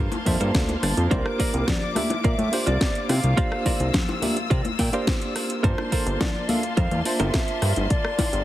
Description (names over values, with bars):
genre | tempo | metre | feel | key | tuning
nu-disco, nu disco | 106 BPM | 4/4 | straight | G dorian | A4 = 440 Hz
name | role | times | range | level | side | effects
rich symphonic string section | sustained chords | 0.0-8.4 s | Bb3 to E6 | -32 LUFS | left 2 dB | sidechain pumping
direct-recorded clean electric guitar | riff | 0.0-7.7 s | F4 to A5 | -31 LUFS | right 4 dB | wide subtle chorus
fat analog bass | bass | 0.0-8.4 s | G1 to C3 | -23 LUFS | equal | none
house drum kit | drums | 0.1-8.4 s | hi-hat, rim click, snare drum | -29 LUFS | right 1 dB | none
bongos and congas | percussion | 0.1-8.3 s | none | -31 LUFS | left 3 dB | none
barky reed electric piano | accompaniment | 0.3-7.9 s | Bb3 to A5 | -30 LUFS | equal | fast tremolo, sidechain pumping, ping-pong delay
electronic kick drum | drums | 0.3-8.3 s | none | -24 LUFS | equal | none
hollow concert flute | melody | 1.0-8.4 s | Bb4 to F5 | -31 LUFS | right 1 dB | tape echo
room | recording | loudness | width
light reverb | heavily compressed radio sound, multiband compression | -20 LUFS | side -14 dB against mid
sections
0.0-8.4 A section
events
clean electric guitar fill 0.0-1.1, 4.5-5.6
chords
0.0 Gm11; 1.1 C9sus4; 5.6 Gm11